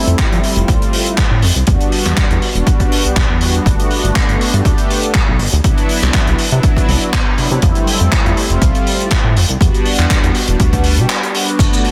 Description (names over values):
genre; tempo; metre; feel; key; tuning
nu-disco, nu disco; 121 BPM; 4/4; swing 53% on 16ths; unclear; A4 = 439 Hz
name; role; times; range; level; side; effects
warm analog pad; accompaniment; 0.0-11.9 s; F#3 to G4; -21 LUFS; equal; chorus, sidechain pumping, tape echo
chorused synth bass; bass; 0.1-11.7 s; E1 to C3; -17 LUFS; equal; sidechain pumping
damped 70s drum kit; drums; 0.1-11.9 s; crash cymbal, handclaps, hi-hat, shaker; -21 LUFS; equal; small room ambience
electronic kick drum; drums; 0.2-11.7 s; none; -17 LUFS; equal; small room ambience
room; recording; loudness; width
light reverb, studio reverb; dense, heavily limited modern master; -14 LUFS; mono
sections
0.0-11.9 A section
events
break 11.1-11.6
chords
0.0 Fmaj7; 1.7 Em7; 3.7 Gmaj7; 5.6 Cmaj9#11; 7.6 Fmaj7; 9.6 Em7